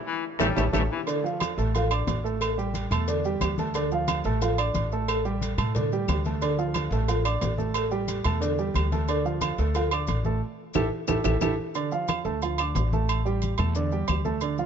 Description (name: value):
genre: latin, salsa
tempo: 180 BPM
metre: 4/4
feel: straight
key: D minor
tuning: A4 = 440 Hz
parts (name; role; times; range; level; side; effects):
- breathy baritone saxophone; second line; 0.1-1.0 s; E3 to G3; -34 LUFS; left 8 dB; none
- bright trombone section; melody; 0.4-0.8 s; E3 to A3; -31 LUFS; left 1 dB; none
- warm grand piano; accompaniment; 0.4-14.7 s; D3 to D6; -29 LUFS; right 5 dB; none
- upright bass; bass; 0.4-14.7 s; A1 to A2; -28 LUFS; left 1 dB; none
- bongos and cowbell; percussion; 0.4-11.5 s; none; -33 LUFS; left 2 dB; none
- claves; percussion; 0.4-14.3 s; none; -37 LUFS; left 10 dB; none
- congas; percussion; 0.4-14.7 s; none; -33 LUFS; left 3 dB; none
- maracas; percussion; 0.4-14.7 s; none; -42 LUFS; left 9 dB; none
- timbales and agogo bells; percussion; 0.4-14.6 s; none; -32 LUFS; right 12 dB; none
room: light reverb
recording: dark, warm production, nothing above 7.7 kHz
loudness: -24 LUFS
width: side -8 dB against mid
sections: 0.0-1.1 A section; 1.1-11.8 B section; 11.8-14.7 B section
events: band accent 0.0-1.1, 10.4-11.8; drum fill 0.4-1.1, 10.4-11.8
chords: 0.0 A7; 1.1 Dm; 2.4 A7sus4; 3.7 Dm; 5.1 A7sus4; 6.4 Dm; 7.8 A7sus4; 9.1 Dm; 10.4 A5; 11.8 Dm; 13.1 A7sus4